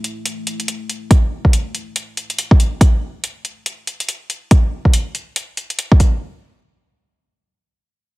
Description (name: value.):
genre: deep dubstep.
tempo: 141 BPM.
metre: 4/4.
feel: swing 60% on 16ths, half-time.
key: unclear.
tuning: A4 = 441 Hz.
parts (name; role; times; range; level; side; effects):
deep dark ambient pad; sustained chords; 0.0-2.9 s; A3 to E4; -34 LUFS; left 3 dB; chorus, built-in reverb.
electronic hi-hat; drums; 0.0-6.1 s; none; -22 LUFS; left 1 dB; overdrive.
electronic kick drum; drums; 1.1-6.1 s; none; -11 LUFS; equal; overdrive.
room: little or no reverb.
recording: heavily compressed radio sound.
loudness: -15 LUFS.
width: side -21 dB against mid.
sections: 0.0-6.2 A section.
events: none.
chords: 0.0 A5.